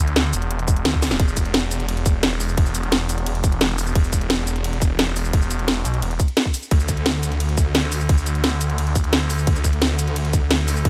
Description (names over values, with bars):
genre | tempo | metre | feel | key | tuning
dark technical drum and bass | 174 BPM | 4/4 | straight | unclear | A4 = 440 Hz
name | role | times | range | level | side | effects
snarling distorted saw bass | bass | 0.0-10.9 s | E1 to D2 | -24 LUFS | equal | distortion, tube saturation
drum and bass drum kit | drums | 0.1-10.9 s | cabasa, hi-hat, ride cymbal, snare drum | -25 LUFS | equal | overdrive
electronic kick drum | drums | 0.7-10.9 s | none | -21 LUFS | equal | none
room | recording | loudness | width
little or no reverb | none | -20 LUFS | mono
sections
0.0-10.9 A section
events
drum fill 1.0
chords
none